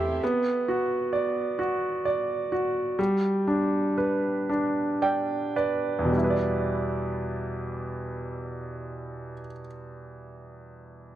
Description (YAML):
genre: pop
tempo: 34-45 BPM (dotted quarters)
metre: 6/8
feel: straight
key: E minor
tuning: A4 = 440 Hz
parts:
  - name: clear grand piano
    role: accompaniment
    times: 0.0-11.2 s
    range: E2 to G5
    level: -26 LUFS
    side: right 1 dB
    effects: none
room: light reverb, studio ambience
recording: dark, warm production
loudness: -24 LUFS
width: side -12 dB against mid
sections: 0.0-6.1 A section; 6.1-9.6 B section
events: grand piano fill 0.0, 4.5-6.1; slowing down 0.2-6.1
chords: 0.2 Bm; 3.0 G